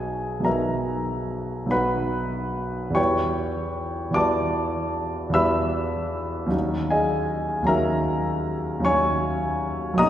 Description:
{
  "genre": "classical, impressionist solo piano",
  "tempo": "47-53 BPM (dotted quarters)",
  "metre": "9/8",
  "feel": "rubato",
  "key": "unclear",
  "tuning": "A4 = 440 Hz",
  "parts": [
    { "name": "warm concert grand piano", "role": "solo", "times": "0.0-10.1 s", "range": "B1 to E6", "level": "-22 LUFS", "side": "equal", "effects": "none" }
  ],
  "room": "wet concert hall reverb, RT60 2.5 s",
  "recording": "heard from further back in the room",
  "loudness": "-22 LUFS",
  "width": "side -11 dB against mid",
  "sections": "0.0-10.1 A section",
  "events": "none",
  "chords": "0.0 Bmaj7; 3.0 Em9; 6.5 D#m7"
}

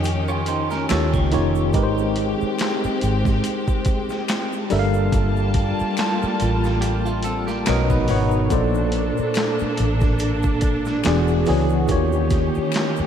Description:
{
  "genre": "R&B, neo-soul",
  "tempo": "71 BPM",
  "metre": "4/4",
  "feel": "swing 56% on 16ths",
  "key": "G minor",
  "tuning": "A4 = 440 Hz",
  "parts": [
    { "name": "tine electric piano", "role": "accompaniment", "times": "0.0-13.1 s", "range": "Bb2 to F#5", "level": "-23 LUFS", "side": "left 1 dB", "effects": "medium stereo tremolo" },
    { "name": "warm studio string section", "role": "sustained chords", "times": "0.0-13.1 s", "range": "Eb3 to A5", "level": "-25 LUFS", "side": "right 1 dB", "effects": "none" },
    { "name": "vintage muted fingered electric bass", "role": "bass", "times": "0.0-13.0 s", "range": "E1 to F2", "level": "-23 LUFS", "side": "equal", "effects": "none" },
    { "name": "egg shaker and finger snaps", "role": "percussion", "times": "0.0-13.1 s", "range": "none", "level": "-38 LUFS", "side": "left 6 dB", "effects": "none" },
    { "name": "boom bap sampler-style drum kit", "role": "drums", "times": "0.1-13.0 s", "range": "handclaps, hi-hat, kick drum, snare drum", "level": "-25 LUFS", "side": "equal", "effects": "none" },
    { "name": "clean electric guitar", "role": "second line", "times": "0.3-1.7, 6.8-8.5 s", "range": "A3 to Db5", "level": "-29 LUFS", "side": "right 4 dB", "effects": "none" }
  ],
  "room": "moderate huge ambient reverb, RT60 4.3 s",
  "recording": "dreamy mix soaked in reverb",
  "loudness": "-18 LUFS",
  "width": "side -8 dB against mid",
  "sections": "0.0-13.1 A section",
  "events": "none",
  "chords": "0.0 Eb7; 1.7 Abmaj9; 4.7 Gm9; 7.7 Bmaj7; 8.5 Bbmaj7; 11.0 E9; 11.9 Eb7"
}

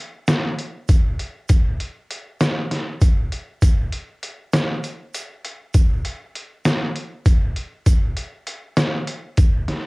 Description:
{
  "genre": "progressive instrumental, progressive",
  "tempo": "198 BPM (eighths)",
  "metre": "7/8",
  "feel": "straight",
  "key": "none",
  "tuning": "none",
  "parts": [
    { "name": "trip hop sampler-style drum kit", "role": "drums", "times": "0.3-9.8 s", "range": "hi-hat, kick drum, snare drum", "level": "-17 LUFS", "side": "equal", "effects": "overdrive, cassette tape" },
    { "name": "tube shaker", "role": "percussion", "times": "0.3-9.7 s", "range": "none", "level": "-39 LUFS", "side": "right 7 dB", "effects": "none" }
  ],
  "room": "light reverb",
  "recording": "home recording on cassette",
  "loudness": "-18 LUFS",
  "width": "side -28 dB against mid",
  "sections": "0.0-9.9 A section",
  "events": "none",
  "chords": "none"
}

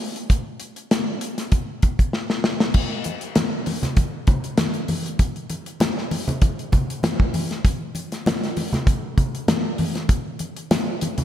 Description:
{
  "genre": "pop",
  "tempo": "98 BPM",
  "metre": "4/4",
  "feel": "swing 54% on 16ths",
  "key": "none",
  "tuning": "none",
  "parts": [
    { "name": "modern studio drum kit", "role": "drums", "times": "0.2-11.2 s", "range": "crash cymbal, hi-hat, kick drum, snare drum", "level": "-21 LUFS", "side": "equal", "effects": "none" },
    { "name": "congas", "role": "percussion", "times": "3.1-11.2 s", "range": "none", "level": "-27 LUFS", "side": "equal", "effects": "none" }
  ],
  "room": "moderate lush hall reverb, RT60 2.2 s",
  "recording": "dreamy mix soaked in reverb",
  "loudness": "-20 LUFS",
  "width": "side -11 dB against mid",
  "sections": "0.0-2.8 A section; 2.8-11.2 B section",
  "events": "drum fill 2.1-2.8",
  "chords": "none"
}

